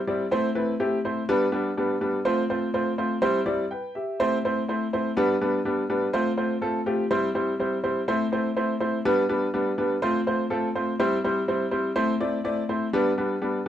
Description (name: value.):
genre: soul.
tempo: 124 BPM.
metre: 4/4.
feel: straight.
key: C major.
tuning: A4 = 440 Hz.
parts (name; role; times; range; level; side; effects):
bright upright piano; solo; 0.1-13.7 s; G3 to G5; -23 LUFS; equal; none.
room: moderate studio ambience, RT60 0.4 s.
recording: band playing live in one room.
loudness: -23 LUFS.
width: side -11 dB against mid.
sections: 0.0-13.7 A section.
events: none.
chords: 0.3 Am; 1.3 G; 2.3 F; 3.2 C; 4.2 Am; 5.2 G; 6.1 F; 7.1 C; 8.1 Am; 9.0 G; 10.0 F; 11.0 C; 12.0 Am; 12.9 G.